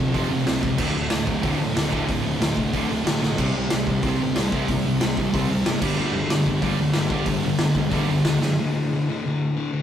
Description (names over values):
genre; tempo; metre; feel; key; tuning
punk rock; 185 BPM; 4/4; straight; unclear; A4 = 440 Hz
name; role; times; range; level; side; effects
overdriven semi-hollow guitar; riff; 0.0-9.8 s; D2 to C4; -24 LUFS; left 3 dB; none
thick fuzz guitar; riff; 0.0-8.4 s; D2 to C4; -28 LUFS; right 1 dB; distortion
tight distorted guitar; riff; 0.0-8.6 s; D2 to C4; -28 LUFS; right 6 dB; distortion
fuzz picked electric bass; bass; 0.0-8.5 s; D1 to G2; -29 LUFS; equal; overdrive
raw garage drum kit; drums; 0.1-8.5 s; crash cymbal, hi-hat, kick drum, snare drum; -26 LUFS; equal; none
room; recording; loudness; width
moderate studio reverb, RT60 0.5 s; rough rehearsal-room recording, warm saturation; -20 LUFS; side -10 dB against mid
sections
0.0-8.6 A section; 8.6-9.8 B section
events
drum fill 3.2, 8.4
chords
0.0 F5; 0.8 D5; 3.4 C5; 5.8 G5; 8.6 D5